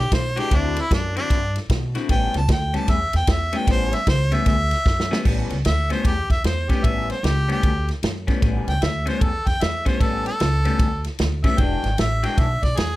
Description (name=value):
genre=electric blues shuffle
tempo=152 BPM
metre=4/4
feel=swing 63% on 8ths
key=A mixolydian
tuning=A4 = 440 Hz
part: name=clear harmonica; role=melody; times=0.0-13.0 s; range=D4 to A5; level=-25 LUFS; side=equal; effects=overdrive
part: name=upright bass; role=bass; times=0.0-13.0 s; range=E1 to B2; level=-23 LUFS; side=equal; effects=none
part: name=natural country drum kit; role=drums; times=0.1-12.9 s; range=crash cymbal, kick drum, ride cymbal, snare drum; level=-22 LUFS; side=equal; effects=none
part: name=electric guitar through a small old amp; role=riff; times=0.4-12.5 s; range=A2 to F#4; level=-26 LUFS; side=left 4 dB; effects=phaser
room=little or no reverb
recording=none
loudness=-18 LUFS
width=side -17 dB against mid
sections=0.0-5.3 A section; 5.3-13.0 B section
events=harmonica solo 0.0-5.3; drum fill 4.9-5.3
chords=0.0 E9; 0.5 D9; 2.1 A9; 11.6 E9